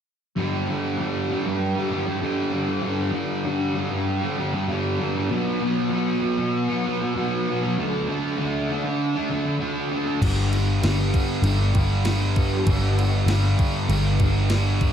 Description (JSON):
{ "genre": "rock, shoegaze and dream pop", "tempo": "98 BPM", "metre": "4/4", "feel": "straight", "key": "G major", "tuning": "A4 = 440 Hz", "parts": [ { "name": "fuzz guitar", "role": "riff", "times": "0.4-14.9 s", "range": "G2 to D4", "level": "-23 LUFS", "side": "equal", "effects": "distortion, wide subtle chorus" }, { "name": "vintage muted picked electric bass", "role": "bass", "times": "10.2-14.9 s", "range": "G1", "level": "-21 LUFS", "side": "equal", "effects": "none" }, { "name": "crisp 8-bit digital drum machine", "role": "drums", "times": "10.2-14.9 s", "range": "crash cymbal, kick drum, snare drum", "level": "-26 LUFS", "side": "equal", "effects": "none" } ], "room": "wet lush hall reverb, RT60 1.9 s", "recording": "dreamy mix soaked in reverb", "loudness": "-21 LUFS", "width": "side -8 dB against mid", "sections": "0.4-10.2 A section; 10.2-14.9 B section", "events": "none", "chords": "0.4 G5; 5.3 B5; 7.8 D5; 10.2 G5" }